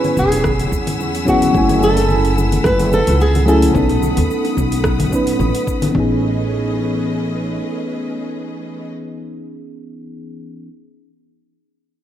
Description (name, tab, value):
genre	sunset chillout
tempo	109 BPM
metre	4/4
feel	swing 56% on 16ths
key	A lydian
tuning	A4 = 444 Hz
part	flamenco guitar	melody	0.0-5.4 s	F#4 to B4	-18 LUFS	equal	ping-pong delay
part	mellow FM electric piano	accompaniment	0.0-10.7 s	E3 to G#5	-20 LUFS	equal	chorus, auto-pan, ping-pong delay
part	rich symphonic string section	sustained chords	0.0-8.9 s	A3 to E6	-28 LUFS	left 1 dB	none
part	deep house drum kit	drums	0.0-5.9 s	cabasa, congas, hi-hat, rim click	-24 LUFS	left 1 dB	overdrive
part	wind-like tuned noise texture	texture	0.0-6.0 s	B5 to B6	-35 LUFS	right 2 dB	built-in reverb
part	upright bass	bass	0.2-7.6 s	E1 to E2	-19 LUFS	equal	tube saturation
part	electronic kick drum	drums	0.2-6.1 s	none	-23 LUFS	equal	overdrive
part	congas and bongos	percussion	0.2-5.9 s	none	-27 LUFS	left 1 dB	none
room	moderate lush hall reverb, RT60 1.8 s, studio ambience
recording	rough home demo mix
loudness	-14 LUFS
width	side -11 dB against mid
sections	0.0-5.9 A section; 5.9-8.2 B section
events	none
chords	0.0 E69; 1.5 F#m9; 3.7 B7; 5.9 Amaj9#11